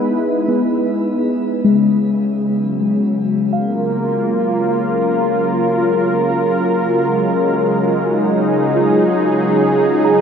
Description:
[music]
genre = ambient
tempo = 52 BPM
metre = 4/4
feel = straight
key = Gb major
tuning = A4 = 438 Hz
[part]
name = warm analog pad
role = sustained chords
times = 0.0-10.2 s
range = Db3 to B4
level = -15 LUFS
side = equal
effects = chorus, shimmer reverb
[part]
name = muted felt-like synth keys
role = arpeggios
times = 0.5-10.2 s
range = Ab3 to Bb5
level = -19 LUFS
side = left 3 dB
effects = chorus, ping-pong delay, shimmer reverb
[sound]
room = wet huge ambient reverb, RT60 8.0 s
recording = none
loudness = -14 LUFS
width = side -7 dB against mid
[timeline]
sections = 0.0-10.2 A section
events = none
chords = 0.0 Emaj7; 1.6 Gbmaj7; 6.2 Ab7sus4

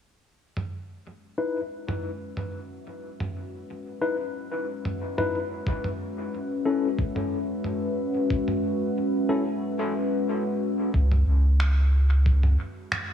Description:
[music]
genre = ambient dub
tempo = 91 BPM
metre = 4/4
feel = straight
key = C# minor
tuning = A4 = 440 Hz
[part]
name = deep dark ambient pad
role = sustained chords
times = 1.7-13.1 s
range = G#3 to E5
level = -29 LUFS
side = left 1 dB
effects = chorus, built-in reverb
[part]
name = lo-fi sampler-style drum kit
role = drums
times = 0.6-13.1 s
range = finger snaps, toms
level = -33 LUFS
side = right 2 dB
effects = studio reverb, dub echo
[part]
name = tine electric piano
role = stabs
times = 1.4-9.4 s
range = C#4 to B4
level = -30 LUFS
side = left 3 dB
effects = medium tremolo, low-pass filter, dub echo
[part]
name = electronic kick drum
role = drums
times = 5.7-12.4 s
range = none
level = -26 LUFS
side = equal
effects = studio reverb
[part]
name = soft dub sub bass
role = bass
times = 10.9-12.6 s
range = C#2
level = -19 LUFS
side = equal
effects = tube saturation
[sound]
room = light reverb, digital ambience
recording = none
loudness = -24 LUFS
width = side -9 dB against mid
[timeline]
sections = 0.4-10.9 A section; 10.9-13.1 B section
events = fade-in on ambient pad 0.4-10.9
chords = 0.4 C#m7; 5.7 Bsus4; 10.9 C#m7

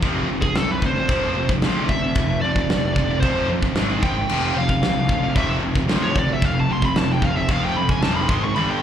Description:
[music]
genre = heavy metal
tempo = 112 BPM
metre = 4/4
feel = straight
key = unclear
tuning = A4 = 441 Hz
[part]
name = heavy high-gain guitar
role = riff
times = 0.0-8.8 s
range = F2 to G#3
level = -23 LUFS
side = right 1 dB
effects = distortion
[part]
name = fuzz picked electric bass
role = bass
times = 0.0-8.8 s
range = F1 to F2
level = -25 LUFS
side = equal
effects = overdrive
[part]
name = big rock drum kit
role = drums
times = 0.0-8.7 s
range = china cymbal, crash cymbal, kick drum, snare drum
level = -23 LUFS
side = equal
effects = none
[part]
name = high-gain lead guitar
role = melody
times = 0.4-8.8 s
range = G#4 to C#6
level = -25 LUFS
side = equal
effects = distortion, tape echo
[sound]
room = studio ambience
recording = live gig heard through the venue's PA, club reverb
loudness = -18 LUFS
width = side -9 dB against mid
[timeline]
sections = 0.0-8.8 A section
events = lead electric guitar solo 0.0-8.8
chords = 0.0 F5; 3.8 G#5; 4.3 F5; 8.3 G#5

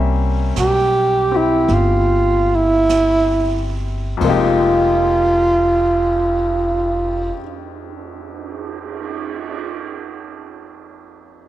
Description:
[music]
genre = jazz ballad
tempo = 43-57 BPM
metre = 4/4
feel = swing 68% on 8ths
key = F minor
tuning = A4 = 436 Hz
[part]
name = clear grand piano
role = accompaniment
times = 0.0-11.5 s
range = F2 to E5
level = -23 LUFS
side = left 7 dB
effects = none
[part]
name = upright bass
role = bass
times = 0.0-7.3 s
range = F1 to C2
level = -21 LUFS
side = equal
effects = none
[part]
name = breathy tenor saxophone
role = melody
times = 0.6-7.3 s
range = E4 to G4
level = -15 LUFS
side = right 2 dB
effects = none
[part]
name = jazz brush drum kit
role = drums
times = 0.6-9.5 s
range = brushed snare drum, cymbal swell, hi-hat, kick drum, ride cymbal, snare drum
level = -31 LUFS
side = right 7 dB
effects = none
[sound]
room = moderate echo chamber reverb, RT60 2.0 s, small room ambience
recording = 1960s-style stereo with parts hard left and right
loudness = -14 LUFS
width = side -13 dB against mid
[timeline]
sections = 0.0-4.2 A section; 4.2-9.8 B section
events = slowing down 0.0-4.2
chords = 0.0 C7b9; 4.2 Fm11

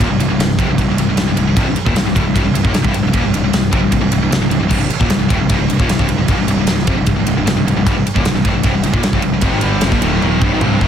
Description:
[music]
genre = heavy metal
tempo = 152 BPM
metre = 4/4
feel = straight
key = C minor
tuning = A4 = 444 Hz
[part]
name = overdriven electric guitar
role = riff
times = 0.0-10.9 s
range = C2 to G3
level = -22 LUFS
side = equal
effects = none
[part]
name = scooped high-gain guitar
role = riff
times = 0.0-10.9 s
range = C2 to G3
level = -19 LUFS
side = right 8 dB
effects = distortion
[part]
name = tight distorted guitar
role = riff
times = 0.0-10.9 s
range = C2 to G3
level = -19 LUFS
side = left 9 dB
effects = distortion
[part]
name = fuzz picked electric bass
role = bass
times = 0.0-10.9 s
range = C1 to Bb1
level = -20 LUFS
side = equal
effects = overdrive
[part]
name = big rock drum kit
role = drums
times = 0.0-10.9 s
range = crash cymbal, kick drum, ride cymbal, snare drum, toms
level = -17 LUFS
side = equal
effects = none
[sound]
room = small room reverb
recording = dense, heavily limited modern master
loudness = -12 LUFS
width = side -9 dB against mid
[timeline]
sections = 0.0-10.9 A section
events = drum fill 10.2-10.9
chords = 0.0 Cm

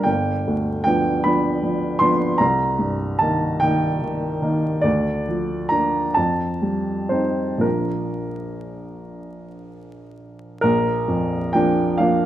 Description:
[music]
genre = classical, romantic nocturne for solo piano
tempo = 37-53 BPM (dotted quarters)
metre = 12/8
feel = rubato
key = Bb major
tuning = A4 = 441 Hz
[part]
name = warm upright piano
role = solo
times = 0.0-12.3 s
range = G1 to C6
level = -19 LUFS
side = equal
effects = none
[sound]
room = moderate recital hall reverb, RT60 1.6 s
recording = close, detailed microphones, vinyl crackle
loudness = -18 LUFS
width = side -12 dB against mid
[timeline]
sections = 0.0-10.6 A section; 10.6-12.3 A section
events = none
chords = 0.1 G7; 2.4 Cm7; 4.8 Bb/D; 6.2 F9; 7.6 Bb

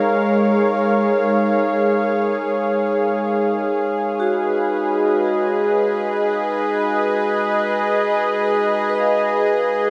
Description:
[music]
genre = ambient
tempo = free time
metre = none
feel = none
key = G# dorian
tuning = A4 = 438 Hz
[part]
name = warm analog pad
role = sustained chords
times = 0.0-9.9 s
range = G#3 to E#5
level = -20 LUFS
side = equal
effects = chorus
[part]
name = analog drone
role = drone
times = 0.0-9.9 s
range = G#3 to D#4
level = -30 LUFS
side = equal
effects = chorus
[part]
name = vibraphone with medium hard mallets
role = arpeggios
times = 4.2-9.9 s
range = F#4 to E#5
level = -26 LUFS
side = equal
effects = diffuse ambient delay
[sound]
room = wet lush hall reverb, RT60 2.9 s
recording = dreamy mix soaked in reverb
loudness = -19 LUFS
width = mono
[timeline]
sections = 0.0-9.9 A section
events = none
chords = 0.0 C#69/G#; 3.7 G#m

